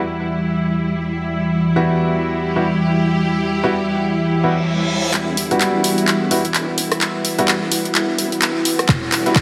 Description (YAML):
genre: bass house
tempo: 128 BPM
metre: 4/4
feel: swing 59% on 16ths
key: E minor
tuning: A4 = 442 Hz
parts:
  - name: deep dark ambient pad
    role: sustained chords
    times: 0.0-9.4 s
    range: E3 to F#5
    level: -24 LUFS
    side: equal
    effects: chorus, built-in reverb, sidechain pumping
  - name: bright symphonic string section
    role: texture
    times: 0.0-9.4 s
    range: G3 to G4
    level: -24 LUFS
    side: equal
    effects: sidechain pumping
  - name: house drum kit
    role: drums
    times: 0.1-9.4 s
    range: handclaps, hi-hat, rim click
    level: -21 LUFS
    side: equal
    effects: high-pass filter on hats, low-pass filter on hats, studio reverb, high-pass filter on snare, low-pass filter on snare, high-pass filter on cymbals, low-pass filter on cymbals
  - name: bright baby grand piano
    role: stabs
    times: 1.8-9.4 s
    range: G3 to F#4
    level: -23 LUFS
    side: equal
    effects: sidechain pumping, low-pass filter, digital delay
  - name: reverse cymbal and riser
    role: sound effects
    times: 4.4-9.4 s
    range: none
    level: -30 LUFS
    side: equal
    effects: none
  - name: vowel-sweep wobble bass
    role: bass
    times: 5.1-9.4 s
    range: E1 to G1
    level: -30 LUFS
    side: equal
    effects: none
  - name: electronic kick drum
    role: drums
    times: 8.9-9.4 s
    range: none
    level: -19 LUFS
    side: equal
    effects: studio reverb
room: moderate lush hall reverb, RT60 2.1 s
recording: high-pass filter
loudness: -18 LUFS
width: mono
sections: 0.0-5.1 A section; 5.1-9.4 B section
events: filter sweep on ambient pad 0.0-5.1; reverse cymbal 4.4-5.1; build-up 5.1-9.4; drum fill 5.1-9.4; filter sweep on grand piano 5.1-9.4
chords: 0.0 Emadd9